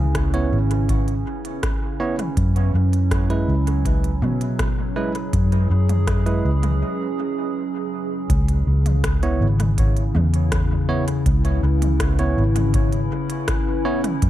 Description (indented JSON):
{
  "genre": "ambient dub",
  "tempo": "81 BPM",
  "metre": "4/4",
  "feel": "straight",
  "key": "C# minor",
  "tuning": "A4 = 439 Hz",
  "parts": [
    { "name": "warbly tape-like pad", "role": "sustained chords", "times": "0.0-14.3 s", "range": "C#3 to B4", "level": "-25 LUFS", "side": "equal", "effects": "chorus, built-in reverb" },
    { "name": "vintage muted fingered electric bass", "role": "bass", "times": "0.0-14.3 s", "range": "G#1 to B2", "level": "-19 LUFS", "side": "equal", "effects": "tube saturation" },
    { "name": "electronic kick drum", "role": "drums", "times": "0.1-14.3 s", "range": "none", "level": "-24 LUFS", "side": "equal", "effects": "studio reverb" },
    { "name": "organic electronic drum kit", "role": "drums", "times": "0.1-14.3 s", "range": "hi-hat, rim click, toms", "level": "-31 LUFS", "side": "right 1 dB", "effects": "overdrive, studio reverb, dub echo" },
    { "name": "barky tine electric piano", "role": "stabs", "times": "0.3-14.0 s", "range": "G#3 to C#5", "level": "-28 LUFS", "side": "right 3 dB", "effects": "dub echo" }
  ],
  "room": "light reverb",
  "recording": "none",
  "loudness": "-18 LUFS",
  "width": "side -13 dB against mid",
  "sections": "0.0-8.3 A section; 8.3-14.3 B section",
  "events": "break 6.8-8.3",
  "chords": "0.0 C#m7; 2.4 F#9sus4; 8.3 C#m7",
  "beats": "0.15 0.89 1.63 | 2.37 3.11 3.85 4.59 | 5.34 6.08 6.82 7.56 | 8.30 9.04 9.78 10.52 | 11.26 12.00 12.74 13.48 | 14.22"
}